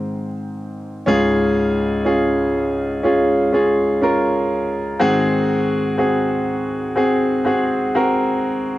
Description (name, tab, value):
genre	pop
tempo	61 BPM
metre	4/4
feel	straight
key	Db major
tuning	A4 = 441 Hz
part	clear concert grand piano	solo	0.0-8.8 s	Db2 to C5	-16 LUFS	equal	cassette tape
room	moderate spring reverb, RT60 1.3 s, small room ambience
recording	home recording on cassette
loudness	-16 LUFS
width	side -15 dB against mid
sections	0.0-1.1 A section; 1.1-8.8 B section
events	grand piano solo 0.0-1.1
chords	0.0 Ab; 1.1 Db; 5.0 Ab7